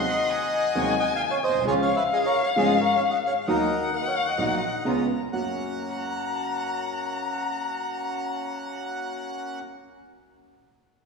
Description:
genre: tango.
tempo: 131 BPM.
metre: 4/4.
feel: rubato.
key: F# major.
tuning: A4 = 439 Hz.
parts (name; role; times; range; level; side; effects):
bandoneon; melody; 0.0-9.6 s; G#4 to G#5; -27 LUFS; right 1 dB; none.
rich violin; second line; 0.0-9.6 s; E#5 to B#5; -28 LUFS; left 6 dB; none.
warm grand piano; accompaniment; 0.0-9.6 s; G#1 to F#4; -29 LUFS; right 1 dB; none.
bandoneon; stabs; 0.0-9.6 s; D#3 to F#4; -33 LUFS; equal; none.
room: wet concert hall reverb, RT60 2.4 s.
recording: recorded in a church or concert hall, small room ambience.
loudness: -23 LUFS.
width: side -4 dB against mid.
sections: 0.0-5.3 A section; 5.3-9.0 B section.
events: none.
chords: 0.0 G#7/D#; 1.7 C#; 3.5 D#m; 4.9 C#7; 5.3 F#.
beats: 0.31 0.76 1.21 | 1.66 2.11 2.57 3.02 | 3.48 3.94 4.40 4.87 | 5.33 5.79 6.25 6.71 | 7.16 7.62 8.08 8.54.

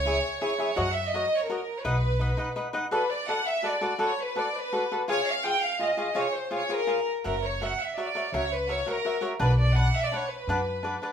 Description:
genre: mexican folk, mariachi.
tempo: 167 BPM.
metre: 3/4.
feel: straight.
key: B minor.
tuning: A4 = 439 Hz.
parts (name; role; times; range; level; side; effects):
clear studio violin section; melody; 0.0-11.1 s; A#4 to G5; -28 LUFS; equal; none.
upright bass; bass; 0.0-2.3, 7.3-11.0 s; F#1 to F#2; -27 LUFS; equal; none.
cavaquinho; accompaniment; 0.1-11.1 s; D4 to F#5; -30 LUFS; left 1 dB; none.
room: wet large studio reverb, RT60 0.8 s.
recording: band playing live in one room.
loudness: -25 LUFS.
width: side -8 dB against mid.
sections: 0.0-2.9 A section; 2.9-11.1 B section.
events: none.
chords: 0.0 C#m; 0.8 F#6; 1.8 B; 2.9 Bm7; 5.1 C#; 7.2 F#7; 9.4 Bm.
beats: 0.07 0.42 | 0.78 1.13 1.49 | 1.84 2.20 2.56 | 2.92 3.29 3.65 | 4.01 4.37 4.73 | 5.08 5.44 5.80 | 6.16 6.51 6.88 | 7.24 7.61 7.97 | 8.33 8.69 9.04 | 9.40 9.76 10.12 | 10.48 10.84.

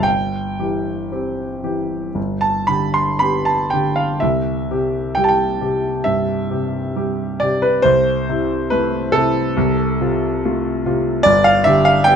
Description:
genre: classical, romantic nocturne for solo piano.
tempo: 56-76 BPM.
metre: 4/4.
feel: rubato.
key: C major.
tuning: A4 = 440 Hz.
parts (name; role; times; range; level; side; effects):
warm grand piano; solo; 0.0-12.2 s; G1 to C6; -15 LUFS; equal; none.
room: light reverb.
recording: close, detailed microphones.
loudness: -16 LUFS.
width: side -7 dB against mid.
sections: 0.0-12.2 A section.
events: none.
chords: 0.1 C/G; 2.2 G; 4.2 C; 7.9 Am/C; 9.6 F/C; 11.2 G5.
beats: | 0.06 1.13 2.16 3.21 | 4.21 5.16 6.06 6.97 | 7.85 8.72 9.56 10.43 | 11.24 12.06.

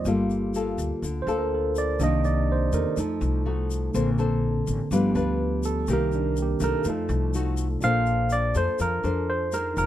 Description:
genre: bossa nova.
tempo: 124 BPM.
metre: 4/4.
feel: straight.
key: Bb major.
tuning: A4 = 439 Hz.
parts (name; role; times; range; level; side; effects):
barky tine electric piano; accompaniment; 0.0-9.9 s; D3 to A5; -28 LUFS; right 4 dB; none.
nylon-string guitar; accompaniment; 0.0-9.9 s; C3 to C5; -28 LUFS; left 4 dB; none.
upright bass; bass; 0.1-9.9 s; F1 to F2; -27 LUFS; left 1 dB; none.
tube shaker; percussion; 0.1-9.9 s; none; -42 LUFS; left 6 dB; none.
barky tine electric piano; melody; 7.8-9.9 s; Bb4 to F5; -25 LUFS; right 1 dB; plate reverb.
room: light reverb.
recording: dark, warm production.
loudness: -22 LUFS.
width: side -12 dB against mid.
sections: 0.0-7.8 A section; 7.8-9.9 B section.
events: tine electric piano solo 0.0-7.8.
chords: 0.1 Gm9; 2.0 Cm9; 3.0 F7b9; 3.9 Bbmaj9; 4.9 G7; 5.9 Cm7; 6.9 F7b9; 7.8 Bbmaj9.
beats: | 0.07 0.55 1.03 1.52 | 2.00 2.49 2.98 3.46 | 3.94 4.43 4.91 5.40 | 5.88 6.37 6.85 7.34 | 7.82 8.31 8.79 9.28 | 9.77.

